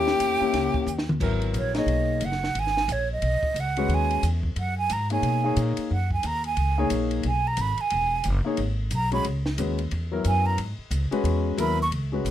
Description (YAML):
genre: modal jazz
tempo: 179 BPM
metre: 4/4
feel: swing 62% on 8ths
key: G# minor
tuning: A4 = 440 Hz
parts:
  - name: breathy concert flute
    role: melody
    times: 0.0-11.9 s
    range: C#5 to C#6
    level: -26 LUFS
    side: right 4 dB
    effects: none
  - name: breathy tenor saxophone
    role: second line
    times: 0.0-1.0 s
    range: G4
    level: -26 LUFS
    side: left 6 dB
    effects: none
  - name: warm grand piano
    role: accompaniment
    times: 0.0-12.3 s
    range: F#3 to C#5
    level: -27 LUFS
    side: left 4 dB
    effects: none
  - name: upright bass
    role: bass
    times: 0.0-12.3 s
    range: E1 to B2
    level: -26 LUFS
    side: equal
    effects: none
  - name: compact cocktail drum kit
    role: drums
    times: 0.1-12.3 s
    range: crash cymbal, hi-hat, kick drum, ride cymbal, snare drum, toms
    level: -34 LUFS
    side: equal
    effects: none
room: light reverb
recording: none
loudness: -22 LUFS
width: side -11 dB against mid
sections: 0.0-1.2 A section; 1.2-11.9 B section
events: drum fill 0.9-1.2; flute solo 1.2-12.3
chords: 0.0 D#7b9; 1.2 G#m9; 6.6 C#m9